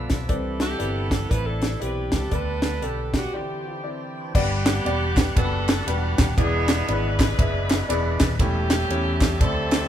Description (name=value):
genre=uptempo gospel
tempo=119 BPM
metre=4/4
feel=swing 62% on 8ths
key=G major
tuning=A4 = 438 Hz
part: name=clear saxophone section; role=melody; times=0.0-9.9 s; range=B3 to B4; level=-30 LUFS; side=equal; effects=none
part: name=warm concert grand piano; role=accompaniment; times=0.0-9.9 s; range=G2 to F#5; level=-29 LUFS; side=left 1 dB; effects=none
part: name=overdriven tonewheel organ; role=sustained chords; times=0.0-9.9 s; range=C3 to F#5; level=-33 LUFS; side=right 1 dB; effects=slow rotary speaker
part: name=fingered electric bass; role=bass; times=0.0-9.8 s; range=Eb1 to E2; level=-26 LUFS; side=equal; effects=none
part: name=tight funk drum kit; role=drums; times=0.1-9.8 s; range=crash cymbal, hi-hat, kick drum, ride cymbal, snare drum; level=-22 LUFS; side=equal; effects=none
part: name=warm alto saxophone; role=melody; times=0.3-3.8 s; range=G4 to B4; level=-31 LUFS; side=right 4 dB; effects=none
part: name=group handclap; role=percussion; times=4.7-9.8 s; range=none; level=-35 LUFS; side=right 2 dB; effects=none
room=moderate large studio reverb, RT60 1.3 s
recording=band playing live in one room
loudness=-20 LUFS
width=side -10 dB against mid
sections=0.0-4.4 A section; 4.4-9.9 B section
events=tonewheel organ fill 0.0; break 3.3-4.4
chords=0.3 Cmaj9; 2.3 G/D; 3.3 D9sus4; 4.4 Gmaj7; 6.4 E7; 8.4 A7/E